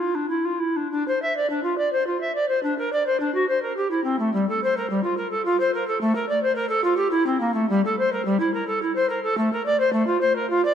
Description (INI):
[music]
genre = classical, baroque-style fantasia for unaccompanied recorder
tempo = 106 BPM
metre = 3/4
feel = rubato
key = unclear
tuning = A4 = 440 Hz
[part]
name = bass recorder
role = solo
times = 0.0-10.7 s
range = G3 to E5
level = -20 LUFS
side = equal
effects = none
[sound]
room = wet concert hall reverb, RT60 2.1 s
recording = dark, warm production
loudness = -20 LUFS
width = side -8 dB against mid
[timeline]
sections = 0.9-10.7 A section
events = none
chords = none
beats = 0.30 | 0.91 1.49 2.06 | 2.63 3.20 3.76 | 4.34 4.91 5.46 | 6.01 6.57 7.12 | 7.69 8.26 8.82 | 9.38 9.94 10.50